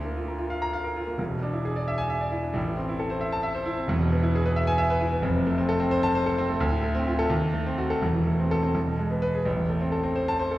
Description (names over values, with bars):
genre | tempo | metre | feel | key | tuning
classical, virtuoso piano study | 88 BPM (dotted quarters) | 6/8 | rubato | A minor | A4 = 444 Hz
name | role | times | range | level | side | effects
clear concert grand piano | solo | 0.0-10.6 s | E1 to Bb5 | -23 LUFS | equal | none
room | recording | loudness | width
wet recital hall reverb, RT60 1.4 s | heard from further back in the room | -23 LUFS | side -16 dB against mid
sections
0.0-9.5 A section; 9.5-10.6 B section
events
none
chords
0.0 Bb/D; 1.2 E7; 2.6 Am; 3.9 E; 5.2 F; 6.6 Dm7; 7.3 D#dim7; 8.0 Am/E; 8.8 E; 9.5 Am